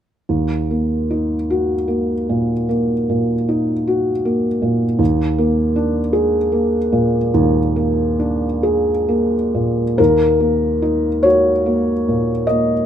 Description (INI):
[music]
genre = classical, romantic nocturne for solo piano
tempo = 42-53 BPM (dotted quarters)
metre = 12/8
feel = rubato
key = Eb minor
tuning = A4 = 441 Hz
[part]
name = felt-muted upright piano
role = solo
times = 0.3-12.9 s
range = Eb2 to Eb5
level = -15 LUFS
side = equal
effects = none
[sound]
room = moderate stone room reverb, RT60 1.0 s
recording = minimal, uncompressed stereo recording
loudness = -15 LUFS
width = side -9 dB against mid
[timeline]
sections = 0.3-10.0 A section; 10.0-12.9 B section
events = none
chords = 0.3 Ebm; 5.0 Bb7/Eb; 10.0 Ebm